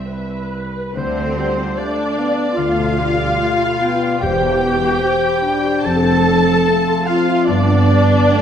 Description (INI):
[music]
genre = cinematic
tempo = 73 BPM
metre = 4/4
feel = rubato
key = unclear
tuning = A4 = 440 Hz
[part]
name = warm studio violin section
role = melody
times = 0.0-8.4 s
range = C5 to A5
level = -26 LUFS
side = left 4 dB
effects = none
[part]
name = warm studio viola section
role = accompaniment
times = 0.0-8.4 s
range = C4 to B4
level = -19 LUFS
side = equal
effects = none
[part]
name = warm studio cello section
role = bass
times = 0.0-8.2 s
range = C2 to D3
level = -22 LUFS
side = right 3 dB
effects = none
[part]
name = rich studio double bass section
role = bass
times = 0.9-8.2 s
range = E1 to D2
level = -24 LUFS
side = right 3 dB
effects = none
[part]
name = silver concert flute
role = second line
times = 1.0-8.4 s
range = C5 to A5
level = -25 LUFS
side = equal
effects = none
[part]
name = warm oboe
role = second line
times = 1.0-8.4 s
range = C5 to A5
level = -24 LUFS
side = right 2 dB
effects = none
[part]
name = warm studio violin section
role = second line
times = 1.0-8.4 s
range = C5 to A5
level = -28 LUFS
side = left 3 dB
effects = none
[part]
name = mellow French horn section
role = sustained chords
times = 1.0-8.4 s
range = G3 to C5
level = -21 LUFS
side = left 2 dB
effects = none
[part]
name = concert harp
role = arpeggios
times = 1.0-8.4 s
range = G2 to C6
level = -25 LUFS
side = left 4 dB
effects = none
[part]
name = timpani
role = percussion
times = 4.2-5.4 s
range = E2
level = -32 LUFS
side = equal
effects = none
[sound]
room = wet scoring stage reverb, RT60 2.0 s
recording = none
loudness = -14 LUFS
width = side -8 dB against mid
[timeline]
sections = 1.0-8.4 A section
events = none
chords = 0.0 C; 1.0 Dm7; 2.6 G/D; 4.2 Cmaj7/E; 5.8 Fmaj7; 7.5 G